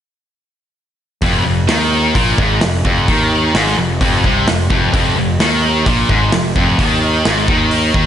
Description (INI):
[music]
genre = hard rock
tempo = 130 BPM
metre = 4/4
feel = straight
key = unclear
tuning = A4 = 440 Hz
[part]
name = high-gain distorted guitar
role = riff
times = 1.2-8.1 s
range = F2 to Eb3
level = -14 LUFS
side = equal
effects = distortion
[part]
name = fuzz picked electric bass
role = bass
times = 1.2-8.1 s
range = F1 to Eb2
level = -18 LUFS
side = equal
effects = overdrive
[part]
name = big rock drum kit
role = drums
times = 1.2-8.0 s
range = hi-hat, kick drum, snare drum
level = -18 LUFS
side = equal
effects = none
[sound]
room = moderate lush hall reverb, RT60 1.8 s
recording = big arena sound, nothing above 11.0 kHz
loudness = -12 LUFS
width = side -10 dB against mid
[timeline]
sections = 1.2-8.1 A section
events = none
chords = 1.2 F5